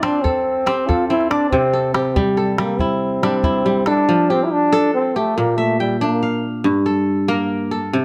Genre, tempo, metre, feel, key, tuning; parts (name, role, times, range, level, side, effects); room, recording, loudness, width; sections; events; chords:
west african traditional, West African string and xylophone music; 94 BPM (dotted quarters); 12/8; straight; F major; A4 = 440 Hz
warm trombone; melody; 0.0-6.5 s; G3 to F4; -21 LUFS; equal
kora; arpeggios; 0.0-8.0 s; G2 to G5; -21 LUFS; equal
calabash; percussion; 0.0-4.0 s; -26 LUFS; equal
light reverb; close, detailed microphones; -18 LUFS; mono
0.0-4.1 A section; 4.1-8.0 B section
0.0 F; 1.5 C; 4.1 F; 5.4 Bb; 6.6 Gm